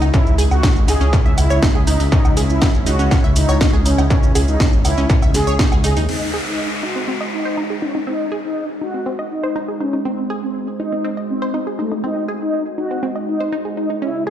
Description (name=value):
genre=melodic techno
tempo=121 BPM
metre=4/4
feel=straight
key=unclear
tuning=A4 = 440 Hz
part: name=expressive synth lead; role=melody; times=0.0-14.2 s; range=A3 to G#4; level=-22 LUFS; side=equal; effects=ensemble chorus, sidechain pumping, ping-pong delay
part: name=lush unison pad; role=sustained chords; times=0.0-14.3 s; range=C#3 to B#4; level=-26 LUFS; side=right 1 dB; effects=chorus, sidechain pumping
part: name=wide unison pluck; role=arpeggios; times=0.0-14.3 s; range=B#3 to E5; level=-25 LUFS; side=right 1 dB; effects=sidechain pumping, tape echo
part: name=dark detuned saw bass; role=bass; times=0.0-6.1 s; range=G#1 to D#2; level=-17 LUFS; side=equal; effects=sidechain pumping
part: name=techno drum kit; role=drums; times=0.0-6.2 s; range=crash cymbal, hi-hat, shaker, snare drum, woodblock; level=-23 LUFS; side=right 1 dB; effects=overdrive, sidechain pumping on perc, sidechain pumping on hats, sidechain pumping on cymbals
part: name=electronic kick drum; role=drums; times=0.1-5.7 s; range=none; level=-15 LUFS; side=equal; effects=distortion, overdrive
part: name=downlifter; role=sound effects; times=6.1-10.1 s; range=none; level=-28 LUFS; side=left 1 dB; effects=none
room=light reverb, digital ambience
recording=played on a big sound system in a bare room, large studio reverb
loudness=-15 LUFS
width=side -10 dB against mid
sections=0.0-6.1 A section; 6.1-14.3 B section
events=drop 0.0-6.1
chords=0.0 C#madd9; 6.1 G#